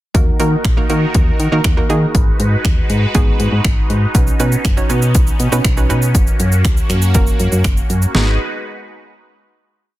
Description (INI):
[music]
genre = dance-pop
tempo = 120 BPM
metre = 4/4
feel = straight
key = G# minor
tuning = A4 = 440 Hz
[part]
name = hollow square pluck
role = accompaniment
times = 0.1-8.4 s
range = A#3 to C#5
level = -21 LUFS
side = right 4 dB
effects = chorus, sidechain pumping
[part]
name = filtered supersaw swell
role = sustained chords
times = 0.1-8.4 s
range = D#3 to B4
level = -24 LUFS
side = equal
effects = phaser, sidechain pumping
[part]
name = solid FM bass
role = bass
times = 0.1-8.4 s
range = F#1 to D#3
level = -16 LUFS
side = equal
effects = sidechain pumping
[part]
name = deep house drum kit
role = drums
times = 0.1-8.3 s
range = finger snaps, hi-hat, kick drum, shaker, snare drum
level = -15 LUFS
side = equal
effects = overdrive, soft clipping on snare
[sound]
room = little or no reverb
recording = dense, heavily limited modern master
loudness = -12 LUFS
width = side -16 dB against mid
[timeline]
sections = 0.1-8.1 bridge; 8.1-10.0 final chord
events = none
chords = 0.1 D#m; 2.1 G#m7; 4.1 Badd9; 6.1 F#; 8.1 G#m7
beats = | 0.15 0.65 1.15 1.65 | 2.15 2.65 3.15 3.65 | 4.15 4.65 5.15 5.65 | 6.15 6.65 7.15 7.65 | 8.15